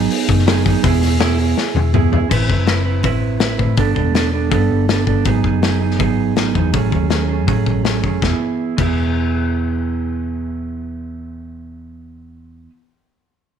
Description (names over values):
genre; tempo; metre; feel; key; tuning
indie rock; 162 BPM; 4/4; straight; E major; A4 = 440 Hz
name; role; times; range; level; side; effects
mellow electric guitar; riff; 0.0-12.7 s; E3 to B4; -19 LUFS; right 9 dB; none
hollow-body short-scale picked electric bass; bass; 0.0-12.7 s; E1 to A2; -19 LUFS; left 2 dB; none
loose indie drum kit; drums; 0.1-8.9 s; crash cymbal, hi-hat, kick drum, snare drum, toms; -19 LUFS; left 6 dB; none
room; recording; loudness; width
light reverb, studio reverb; 1960s-style stereo with parts hard left and right; -14 LUFS; side -8 dB against mid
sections
0.0-2.3 A section; 2.3-8.2 B section; 8.2-11.2 C section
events
drum fill 1.6-2.3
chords
0.0 G#m7; 0.8 E; 2.3 Amadd9; 3.8 Gadd9; 5.3 G#m7; 6.7 F#madd9/A; 8.2 E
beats
0.10 0.47 | 0.83 1.20 1.57 1.93 | 2.30 2.67 3.04 3.41 | 3.78 4.14 4.51 4.88 | 5.25 5.62 5.99 6.36 | 6.73 7.11 7.48 7.85 | 8.22 8.59 8.96 9.33 | 9.70 10.07 10.45 10.82